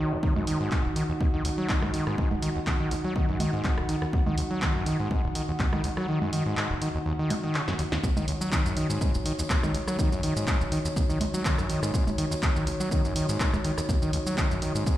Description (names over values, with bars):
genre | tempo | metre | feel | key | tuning
acid house | 123 BPM | 4/4 | swing 54% on 16ths | Eb minor pentatonic | A4 = 440 Hz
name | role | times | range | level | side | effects
dark analog pad | sustained chords | 0.0-15.0 s | Eb3 to Gb5 | -32 LUFS | equal | chorus, vintage 12-bit sampler grit, sidechain pumping
overdriven acid bass | riff | 0.0-15.0 s | Eb1 to Gb3 | -29 LUFS | equal | distortion, tube saturation, sidechain pumping, ping-pong delay
electronic kick drum | drums | 0.2-15.0 s | none | -27 LUFS | equal | none
punchy analog drum machine | drums | 0.4-15.0 s | congas, handclaps, hi-hat, rim click, shaker, snare drum | -32 LUFS | right 1 dB | none
room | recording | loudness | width
light reverb, digital ambience | played on a big sound system in a bare room, stone room reverb | -24 LUFS | side -14 dB against mid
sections
0.0-8.0 A section; 8.0-15.0 B section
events
kick drops out 6.1-8.0; drum fill 7.7-8.0; drop 8.0-15.0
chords
0.0 Ebm; 8.0 Ebm7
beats
| 0.23 0.72 1.21 1.69 | 2.18 2.67 3.16 3.65 | 4.13 4.62 5.11 5.60 | 6.08 6.57 7.06 7.55 | 8.04 8.52 9.01 9.50 | 9.99 10.47 10.96 11.45 | 11.94 12.43 12.91 13.40 | 13.89 14.38 14.87